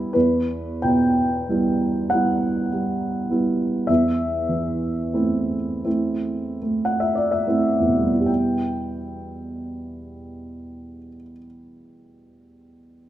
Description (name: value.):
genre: classical, romantic nocturne for solo piano.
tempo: 22-34 BPM (dotted quarters).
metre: 6/8.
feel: rubato.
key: E minor.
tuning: A4 = 440 Hz.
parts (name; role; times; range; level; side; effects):
warm upright piano; solo; 0.0-13.1 s; E2 to G5; -20 LUFS; right 1 dB; none.
room: moderate recital hall reverb, RT60 1.5 s.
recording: close, detailed microphones.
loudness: -19 LUFS.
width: side -13 dB against mid.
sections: 0.1-8.3 A section; 8.3-12.6 B section.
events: slowing down 0.0-8.3.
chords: 0.1 Em; 3.9 Am/E; 8.3 Em.